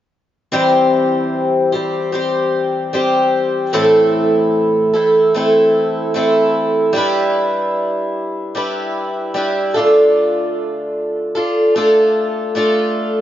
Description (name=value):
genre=pop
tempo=75 BPM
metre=4/4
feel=swing 60% on 16ths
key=C major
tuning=A4 = 440 Hz
part: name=picked twelve-string acoustic guitar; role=accompaniment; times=0.5-13.2 s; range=A2 to C5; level=-13 LUFS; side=equal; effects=none
room=moderate plate reverb, RT60 2.6 s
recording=nothing above 7.5 kHz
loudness=-13 LUFS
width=side -12 dB against mid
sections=0.5-13.2 A section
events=none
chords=0.5 C; 3.7 Am; 6.9 G6; 9.8 Dm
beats=| 0.53 1.33 2.13 2.94 | 3.74 4.54 5.34 6.14 | 6.95 7.75 8.55 9.35 | 10.15 10.95 11.75 12.55